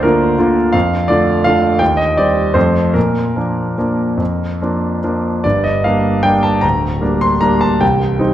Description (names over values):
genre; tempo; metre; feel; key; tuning
classical, piano waltz; 141-176 BPM; 3/4; rubato; unclear; A4 = 442 Hz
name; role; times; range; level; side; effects
clear concert grand piano; solo; 0.0-8.3 s; C1 to C6; -12 LUFS; equal; none
room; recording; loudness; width
moderate recital hall reverb, RT60 1.7 s; dark, warm production; -12 LUFS; side -12 dB against mid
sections
0.0-5.4 A section; 5.4-8.3 B section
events
none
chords
0.0 Gm7 (rootless); 0.7 Dm/F; 1.8 Cm/Eb; 2.5 F; 3.0 Bb; 5.4 Gm; 7.8 Cm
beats
0.04 0.40 | 0.74 1.09 1.45 | 1.80 2.17 2.55 | 2.95 3.36 3.79 | 4.19 4.61 5.03 | 5.44 5.85 6.25 | 6.64 7.02 7.42 | 7.81 8.20